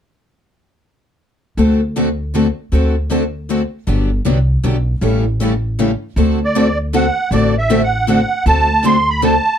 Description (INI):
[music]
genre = acoustic string swing (jazz manouche)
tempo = 157 BPM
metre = 3/4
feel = swing 62% on 8ths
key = D mixolydian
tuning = A4 = 440 Hz
[part]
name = picked steel-string acoustic guitar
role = accompaniment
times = 1.6-9.3 s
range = C#3 to A4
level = -18 LUFS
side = left 9 dB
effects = none
[part]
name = picked steel-string acoustic guitar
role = accompaniment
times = 1.6-9.3 s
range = D3 to A4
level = -20 LUFS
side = right 6 dB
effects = none
[part]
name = upright bass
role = bass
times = 1.6-9.4 s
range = G1 to D2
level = -17 LUFS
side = equal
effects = none
[part]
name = musette accordion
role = melody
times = 6.4-9.6 s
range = D5 to C6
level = -15 LUFS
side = right 3 dB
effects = none
[sound]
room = light reverb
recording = dark, warm production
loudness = -13 LUFS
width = side -8 dB against mid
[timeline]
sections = 1.6-6.2 A section; 6.2-9.6 B section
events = none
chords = 1.6 D7; 3.9 Gmaj7; 5.0 A7; 6.2 D7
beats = | 1.58 1.97 2.35 | 2.73 3.11 3.49 | 3.88 4.26 4.64 | 5.02 5.41 5.79 | 6.17 6.55 6.93 | 7.32 7.70 8.08 | 8.46 8.84 9.22